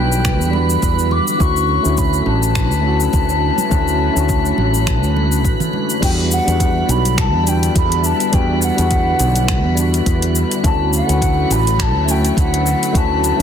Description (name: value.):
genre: sunset chillout.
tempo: 104 BPM.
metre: 4/4.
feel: swing 56% on 16ths.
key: E dorian.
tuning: A4 = 440 Hz.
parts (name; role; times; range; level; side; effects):
mellow baroque flute; melody; 0.0-13.4 s; F#5 to D6; -21 LUFS; left 2 dB; tape echo.
tine electric piano; accompaniment; 0.0-13.4 s; F#3 to F#4; -22 LUFS; equal; auto-pan, tape echo.
soft string machine; sustained chords; 0.0-13.4 s; D3 to E4; -25 LUFS; equal; ensemble chorus.
woody fretless electric bass; bass; 0.0-13.4 s; A1 to E2; -18 LUFS; equal; none.
drifting glass-harmonics texture; texture; 0.0-13.4 s; B4 to B5; -26 LUFS; right 1 dB; chorus, built-in reverb.
deep house drum kit; drums; 0.1-13.4 s; crash cymbal, finger snaps, hi-hat, shaker; -24 LUFS; left 2 dB; overdrive, soft clipping on snare.
electronic kick drum; drums; 0.2-13.1 s; none; -19 LUFS; equal; overdrive.
congas; percussion; 0.5-5.9 s; none; -27 LUFS; right 3 dB; none.
room: light reverb.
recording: dense, heavily limited modern master.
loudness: -13 LUFS.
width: side -8 dB against mid.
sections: 0.0-6.0 A section; 6.0-13.4 B section.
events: none.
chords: 0.0 Em9; 1.4 Dmaj7; 6.0 Em9; 10.6 Dmaj7.